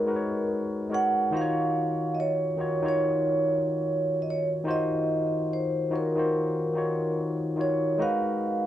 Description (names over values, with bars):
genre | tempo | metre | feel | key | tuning
R&B | 72 BPM | 4/4 | swing 62% on 16ths | unclear | A4 = 444 Hz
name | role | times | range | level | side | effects
vibraphone with soft mallets | melody | 0.0-8.7 s | A#4 to F#5 | -27 LUFS | right 2 dB | none
barky tine electric piano | accompaniment | 0.0-8.7 s | D#3 to C#5 | -28 LUFS | left 2 dB | overdrive
room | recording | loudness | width
light reverb | dark, warm production | -24 LUFS | side -12 dB against mid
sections
0.0-8.7 A section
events
none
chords
0.0 G#m9; 1.3 D#m9; 8.0 G#m9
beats
0.49 | 1.32 2.15 2.99 3.82 | 4.66 5.49 6.32 7.16 | 7.99